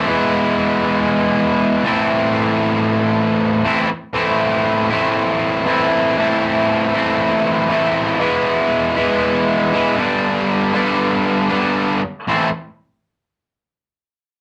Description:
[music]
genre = rock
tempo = 118 BPM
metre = 4/4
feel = straight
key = A minor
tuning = A4 = 439 Hz
[part]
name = distorted electric guitar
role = solo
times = 0.0-12.5 s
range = G2 to E4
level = -17 LUFS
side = equal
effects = distortion
[sound]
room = moderate small room reverb, RT60 0.5 s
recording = rough rehearsal-room recording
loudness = -17 LUFS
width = mono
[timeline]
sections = 0.0-4.1 A section; 4.1-12.3 B section; 12.3-14.3 C section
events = none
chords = 0.1 E; 1.9 Am; 8.2 E; 10.0 G; 12.3 Am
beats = | 0.06 0.57 1.08 1.59 | 2.10 2.62 3.12 3.63 | 4.14 4.65 5.16 5.67 | 6.18 6.69 7.19 7.70 | 8.21 8.72 9.22 9.73 | 10.24 10.75 11.26 11.77 | 12.28

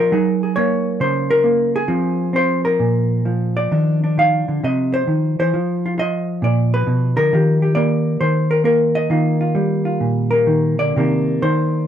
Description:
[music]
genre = solo jazz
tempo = 133 BPM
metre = 4/4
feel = swing 67% on 8ths, rubato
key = Eb major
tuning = A4 = 443 Hz
[part]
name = hollow-body jazz guitar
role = solo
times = 0.0-11.9 s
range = Bb2 to F5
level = -15 LUFS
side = equal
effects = none
[sound]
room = little or no reverb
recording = dry, close 1970s-style studio recording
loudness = -15 LUFS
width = side -9 dB against mid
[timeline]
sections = 0.0-11.0 A section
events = none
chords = 0.1 Gb69; 1.9 Fm; 2.8 Bb5; 3.7 Ebsus2; 4.6 Cmadd11; 5.5 N.C.; 6.4 Bb; 7.3 Ebmaj9; 11.0 Cm9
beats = | 0.11 0.55 0.99 1.43 | 1.87 2.32 2.78 3.24 | 3.71 4.17 4.63 5.08 | 5.53 5.99 6.43 6.87 | 7.32 7.75 8.20 8.65 | 9.10 9.55 10.02 10.49 | 10.96 11.43

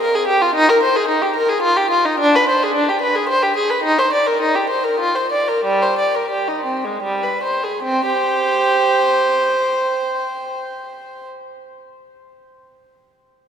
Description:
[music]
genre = classical, baroque-style suite movement for unaccompanied violin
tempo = 73-112 BPM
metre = 3/4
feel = rubato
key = C minor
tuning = A4 = 440 Hz
[part]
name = warm violin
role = solo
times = 0.0-11.3 s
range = G3 to D5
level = -15 LUFS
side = equal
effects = none
[sound]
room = wet cathedral reverb, RT60 4.5 s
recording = minimal, uncompressed stereo recording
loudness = -15 LUFS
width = side -8 dB against mid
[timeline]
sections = 0.0-7.8 A section; 7.8-12.7 B section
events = slowing down 3.0-7.8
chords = 0.0 N.C.; 0.6 Eb; 2.2 G/D; 3.9 Cm/Eb; 5.0 F5; 5.6 Gsus4; 7.0 G; 7.8 C5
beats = 0.02 | 0.56 1.10 1.63 | 2.19 2.76 3.30 | 3.85 4.42 5.01 | 5.64 6.32 7.03 | 7.84 8.65 9.46 | 10.27 11.08

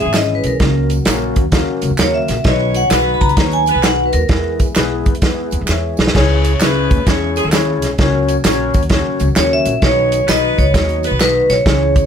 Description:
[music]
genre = uptempo 1960s-style soul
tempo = 130 BPM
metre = 4/4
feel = swing 65% on 8ths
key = unclear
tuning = A4 = 440 Hz
[part]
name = vibraphone with hard mallets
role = melody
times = 0.0-4.6, 9.4-12.1 s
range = A#4 to B5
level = -16 LUFS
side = equal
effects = none
[part]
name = warm saxophone section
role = second line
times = 0.0-11.2 s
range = G#3 to C#5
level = -21 LUFS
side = right 1 dB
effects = none
[part]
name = overdriven tine electric piano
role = accompaniment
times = 0.0-12.0 s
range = G#3 to E5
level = -20 LUFS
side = left 4 dB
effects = wide subtle chorus
[part]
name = tonewheel organ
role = sustained chords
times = 0.0-12.1 s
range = C#3 to G#4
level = -27 LUFS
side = left 1 dB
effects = none
[part]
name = upright bass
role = bass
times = 0.1-12.0 s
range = G#1 to F#2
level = -19 LUFS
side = equal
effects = none
[part]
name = warm soul drum kit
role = drums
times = 0.1-12.0 s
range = crash cymbal, hi-hat, kick drum, snare drum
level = -16 LUFS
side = right 1 dB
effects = none
[part]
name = handclaps and tambourine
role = percussion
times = 0.1-12.0 s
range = none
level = -27 LUFS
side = right 3 dB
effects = none
[sound]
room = light reverb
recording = none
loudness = -12 LUFS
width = side -8 dB against mid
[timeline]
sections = 0.0-12.1 A section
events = drum fill 5.7-6.2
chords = 0.0 C#m; 0.6 F#; 2.5 B; 4.3 E; 6.2 C#m; 8.0 F#; 9.8 B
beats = 0.14 | 0.60 1.07 1.53 1.99 | 2.46 2.92 3.38 3.84 | 4.31 4.77 5.23 5.69 | 6.15 6.61 7.07 7.53 | 7.99 8.45 8.91 9.37 | 9.83 10.29 10.74 11.20 | 11.66

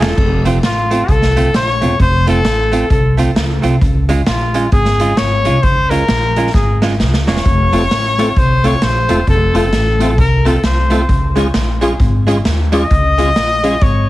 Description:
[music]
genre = ska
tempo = 132 BPM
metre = 4/4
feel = swing 61% on 8ths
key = Db major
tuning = A4 = 436 Hz
[part]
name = clear trumpet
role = melody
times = 0.0-14.1 s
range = F4 to Eb5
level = -17 LUFS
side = left 2 dB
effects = analog delay
[part]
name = archtop guitar, miked and amplified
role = accompaniment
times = 0.0-13.8 s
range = Ab3 to F4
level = -20 LUFS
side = right 3 dB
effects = tube saturation
[part]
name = upright bass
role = bass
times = 0.0-14.1 s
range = Fb1 to Eb2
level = -15 LUFS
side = equal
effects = none
[part]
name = street-band drum kit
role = drums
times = 0.0-13.9 s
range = crash cymbal, hi-hat, kick drum, snare drum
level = -16 LUFS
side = equal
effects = none
[part]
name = tonewheel organ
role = stabs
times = 7.7-13.7 s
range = Ab3 to A4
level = -20 LUFS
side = left 2 dB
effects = overdrive, chorus vibrato, slow rotary speaker
[sound]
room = light reverb, small room ambience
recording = heavily compressed radio sound, cassette tape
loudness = -11 LUFS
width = side -16 dB against mid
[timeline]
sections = 0.0-14.1 A section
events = drum fill 0.0, 6.5-7.5; trumpet solo 0.0-14.1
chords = 0.2 F; 3.8 Db; 7.5 F; 11.1 Db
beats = | 0.18 0.63 1.09 1.54 | 2.00 2.45 2.91 3.36 | 3.82 4.27 4.73 5.18 | 5.63 6.09 6.54 7.00 | 7.45 7.91 8.36 8.82 | 9.27 9.73 10.18 10.64 | 11.09 11.54 12.00 12.45 | 12.91 13.36 13.82

